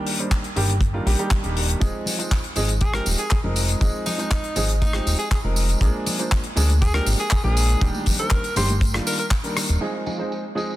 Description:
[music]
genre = nu-disco, nu disco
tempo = 120 BPM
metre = 4/4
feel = straight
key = F dorian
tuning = A4 = 440 Hz
[part]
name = warm grand piano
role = accompaniment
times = 0.0-10.7 s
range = Eb3 to C5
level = -27 LUFS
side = right 2 dB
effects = vintage 12-bit sampler grit, sidechain pumping, low-pass filter, dub echo
[part]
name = damped 70s drum kit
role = drums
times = 0.1-10.8 s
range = handclaps, hi-hat, rim click, tambourine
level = -26 LUFS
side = left 2 dB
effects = low-pass filter on hats, soft clipping on snare, low-pass filter on snare, low-pass filter on perc, low-pass filter on room
[part]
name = kick drum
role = drums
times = 0.3-9.4 s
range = none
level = -21 LUFS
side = equal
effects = none
[part]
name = chorused synth bass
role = bass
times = 0.6-9.8 s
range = Eb1 to D2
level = -21 LUFS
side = equal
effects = none
[part]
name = congas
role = percussion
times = 2.1-10.2 s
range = none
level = -33 LUFS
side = left 2 dB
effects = none
[part]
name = breathy tenor saxophone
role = melody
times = 2.8-9.3 s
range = Eb4 to C5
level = -29 LUFS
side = equal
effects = dub echo
[part]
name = direct-recorded clean electric guitar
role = riff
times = 9.8-10.6 s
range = Eb4 to Ab4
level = -33 LUFS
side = right 4 dB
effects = ensemble chorus, low-pass filter, dub echo
[sound]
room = light reverb, small room ambience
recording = dense, heavily limited modern master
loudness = -19 LUFS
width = side -15 dB against mid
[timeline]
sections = 0.0-9.8 A section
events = none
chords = 0.0 Ebmaj7; 1.8 Fm7; 5.8 Bb7; 7.8 Ebmaj7; 9.8 Fm7

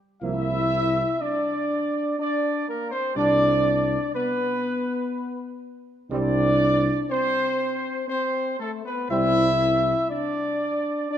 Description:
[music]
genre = classical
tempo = 61 BPM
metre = 3/4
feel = straight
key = C major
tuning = A4 = 440 Hz
[part]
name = mellow trumpet section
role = melody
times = 0.2-11.2 s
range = A4 to E5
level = -24 LUFS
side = right 1 dB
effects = none
[part]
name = mellow French horn section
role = sustained chords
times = 0.2-11.2 s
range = A3 to E4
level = -27 LUFS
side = left 4 dB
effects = none
[part]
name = warm trombone section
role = sustained chords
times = 0.2-9.5 s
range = F3 to D4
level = -31 LUFS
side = right 5 dB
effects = none
[part]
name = mellow tuba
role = bass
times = 0.2-9.9 s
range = C2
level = -27 LUFS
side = right 3 dB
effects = none
[sound]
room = moderate concert hall reverb, RT60 2.0 s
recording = none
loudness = -21 LUFS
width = side -10 dB against mid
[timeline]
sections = 0.0-11.2 A section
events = none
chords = 0.2 Bb/C; 3.2 G/C; 6.1 Csus2

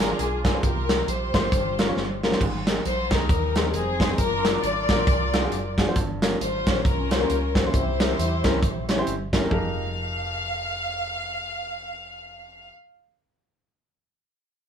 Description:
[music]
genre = uptempo gospel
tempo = 135 BPM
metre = 4/4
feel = swing 60% on 8ths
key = F minor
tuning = A4 = 440 Hz
[part]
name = warm chamber string section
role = melody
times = 0.0-12.7 s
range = C4 to F5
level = -27 LUFS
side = left 2 dB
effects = none
[part]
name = warm upright piano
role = accompaniment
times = 0.0-12.7 s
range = F2 to Db5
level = -28 LUFS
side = equal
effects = none
[part]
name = hollow-body short-scale fingered electric bass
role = bass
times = 0.0-12.7 s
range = F1 to E2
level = -30 LUFS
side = equal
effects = none
[part]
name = modern studio drum kit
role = drums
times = 0.0-9.6 s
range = crash cymbal, hi-hat, kick drum, snare drum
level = -24 LUFS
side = right 1 dB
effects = none
[sound]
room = moderate studio reverb, RT60 0.6 s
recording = band playing live in one room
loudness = -21 LUFS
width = side -8 dB against mid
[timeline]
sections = 0.0-9.5 A section; 9.5-13.1 B section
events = drum fill 2.0-2.4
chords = 0.0 Bb9; 0.6 C7sus4; 1.5 Gm7b5; 2.4 Abmaj9; 4.2 D7alt/F#; 6.0 Gm7b5; 7.7 C7b9; 9.5 Fm11

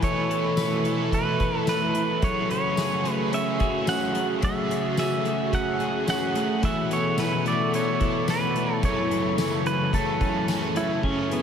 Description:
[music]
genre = dream pop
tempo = 109 BPM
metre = 4/4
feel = straight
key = F# minor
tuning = A4 = 440 Hz
[part]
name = pedal steel guitar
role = melody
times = 0.0-11.4 s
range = B3 to F#5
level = -27 LUFS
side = right 2 dB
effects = diffuse ambient delay
[part]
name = cranked stack guitar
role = accompaniment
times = 0.0-11.4 s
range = F#2 to B4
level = -32 LUFS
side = right 2 dB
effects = overdrive, tremolo, ensemble chorus
[part]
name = hollow soft pad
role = sustained chords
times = 0.0-11.4 s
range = A2 to A4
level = -28 LUFS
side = equal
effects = chorus
[part]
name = clean electric guitar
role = arpeggios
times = 0.0-11.4 s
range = F#2 to B4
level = -29 LUFS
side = left 4 dB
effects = wide subtle chorus, diffuse ambient delay
[part]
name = soft-mallet drum kit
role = drums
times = 0.0-11.4 s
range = crash cymbal, hi-hat, kick drum, snare drum, tambourine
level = -30 LUFS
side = equal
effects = none
[part]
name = vibraphone with soft mallets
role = texture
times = 0.0-11.4 s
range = E4 to B4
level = -38 LUFS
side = right 1 dB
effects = none
[sound]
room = wet huge ambient reverb, RT60 7.9 s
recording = dreamy mix soaked in reverb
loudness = -22 LUFS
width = side -8 dB against mid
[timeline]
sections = 0.0-11.0 A section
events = none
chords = 0.0 Esus4; 2.2 F#madd9; 6.6 Esus4; 8.8 F#m7

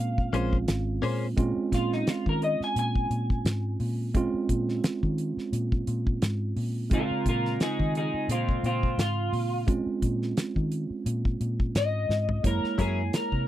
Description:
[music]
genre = straight-eighth soul blues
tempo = 87 BPM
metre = 4/4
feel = swing 56% on 16ths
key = Bb minor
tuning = A4 = 441 Hz
[part]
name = electric guitar through a small old amp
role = melody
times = 0.0-13.5 s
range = C4 to Ab5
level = -30 LUFS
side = left 1 dB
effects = analog chorus
[part]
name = tine electric piano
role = accompaniment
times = 0.0-13.5 s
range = Db3 to Db5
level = -31 LUFS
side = right 4 dB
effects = none
[part]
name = vintage muted fingered electric bass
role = bass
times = 0.0-13.5 s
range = Ab1 to Eb3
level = -29 LUFS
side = equal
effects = none
[part]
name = damped 70s drum kit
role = drums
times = 0.2-13.5 s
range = hi-hat, kick drum, snare drum, toms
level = -28 LUFS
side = equal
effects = none
[part]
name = direct-recorded clean electric guitar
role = stabs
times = 0.3-1.3, 12.8-13.0 s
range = Gb3 to C5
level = -30 LUFS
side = left 6 dB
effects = lush chorus
[sound]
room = little or no reverb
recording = dry, close 1970s-style studio recording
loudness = -25 LUFS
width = side -13 dB against mid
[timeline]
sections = 0.0-1.4 A section; 1.4-13.5 B section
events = clean electric guitar solo 0.0-1.4; drum fill 12.1-12.4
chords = 0.0 Bbm9; 12.4 Gb7

